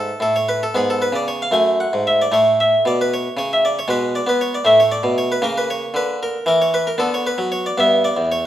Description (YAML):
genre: classical, baroque-style suite movement for harpsichord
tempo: 77 BPM (dotted quarters)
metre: 6/8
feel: rubato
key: unclear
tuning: A4 = 438 Hz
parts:
  - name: harpsichord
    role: solo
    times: 0.0-8.5 s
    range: E2 to G#5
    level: -16 LUFS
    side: equal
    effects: none
room: wet stone room reverb, RT60 1.2 s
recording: none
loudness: -15 LUFS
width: side -12 dB against mid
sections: 0.0-8.5 A section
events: none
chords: 0.0 F#m (rootless); 0.7 C#5/G#; 1.5 F#m; 2.3 A; 3.9 Bm69; 4.7 Aadd9; 5.4 C#m6; 7.0 Bm/D; 7.8 Em/G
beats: | 0.74 1.53 | 2.32 3.10 | 3.88 4.65 | 5.43 6.21 | 6.99 7.77